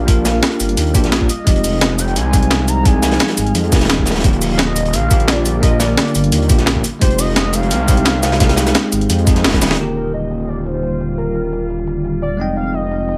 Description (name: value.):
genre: liquid drum and bass.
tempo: 173 BPM.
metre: 4/4.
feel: straight.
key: unclear.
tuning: A4 = 436 Hz.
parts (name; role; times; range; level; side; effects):
warm velvety synth lead; melody; 0.0-13.2 s; Bb4 to Bb5; -26 LUFS; equal; chorus, digital delay.
bell-like tine electric piano; accompaniment; 0.0-13.2 s; D3 to G5; -23 LUFS; equal; low-pass filter, digital delay.
glassy FM pad; sustained chords; 0.0-13.2 s; D3 to G5; -28 LUFS; equal; none.
swelling detuned saw bass; bass; 0.0-13.2 s; Eb1 to F2; -21 LUFS; equal; none.
breakbeat sampler-style drum kit; drums; 0.1-13.2 s; hi-hat, shaker, snare drum; -21 LUFS; equal; low-pass filter on hats, small room ambience, low-pass filter on snare, low-pass filter on perc.
crunchy breakbeat drum kit; drums; 0.1-9.8 s; hi-hat, snare drum; -25 LUFS; equal; high-pass filter on hats, small room ambience, high-pass filter on snare, high-pass filter on room.
electronic kick drum; drums; 0.1-9.6 s; none; -16 LUFS; equal; small room ambience.
room: little or no reverb.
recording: none.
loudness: -15 LUFS.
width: mono.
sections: 0.0-9.8 A section; 9.8-13.2 B section.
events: band accent 9.4; drum fill 9.6.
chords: 0.0 Ebmaj9; 1.3 Fm9; 4.2 Ebmaj9; 6.8 Fm9; 9.8 Ebmaj9; 12.4 Fm9.